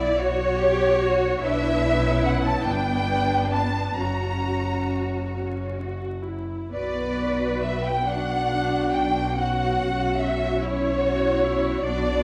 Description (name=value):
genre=classical, slow romantic movement for string orchestra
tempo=42-50 BPM (dotted quarters)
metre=6/8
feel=rubato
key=unclear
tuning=A4 = 440 Hz
part: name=warm studio violin section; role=melody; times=0.0-12.2 s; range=C#5 to A#5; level=-29 LUFS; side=equal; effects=none
part: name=rich studio violin section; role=second line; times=0.0-12.2 s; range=C#5 to A#5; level=-32 LUFS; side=equal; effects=none
part: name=warm studio viola section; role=accompaniment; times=0.0-12.2 s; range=B3 to D5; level=-30 LUFS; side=equal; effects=none
part: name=clear studio cello section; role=bass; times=0.0-12.2 s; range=D4 to B4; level=-32 LUFS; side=equal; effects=none
part: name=clear studio double bass section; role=bass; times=0.0-12.2 s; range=F#1 to B1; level=-30 LUFS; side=equal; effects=none
room=moderate scoring stage reverb, RT60 1.7 s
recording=vinyl crackle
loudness=-24 LUFS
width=mono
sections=0.0-12.2 A section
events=none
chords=0.0 F#5/B; 1.4 Bm; 2.7 G; 4.0 F#; 6.7 Bm; 9.4 F#5/B